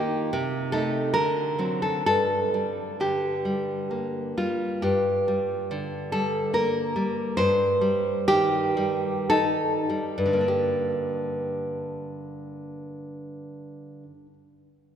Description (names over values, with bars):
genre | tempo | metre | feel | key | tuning
romantic piece for solo classical guitar | 49-77 BPM | 3/4 | rubato | G minor | A4 = 440 Hz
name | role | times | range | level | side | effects
nylon-string guitar | solo | 0.0-14.3 s | G2 to C5 | -24 LUFS | equal | none
room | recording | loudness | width
wet cathedral reverb, RT60 4.0 s | recorded in a church or concert hall | -23 LUFS | side -8 dB against mid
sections
0.0-4.8 A section; 4.8-10.5 B section; 10.5-13.7 C section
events
slowing down 3.5-10.5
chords
0.3 Adim/C; 1.1 D7; 2.1 Gm; 7.4 Cm/G; 10.5 Gm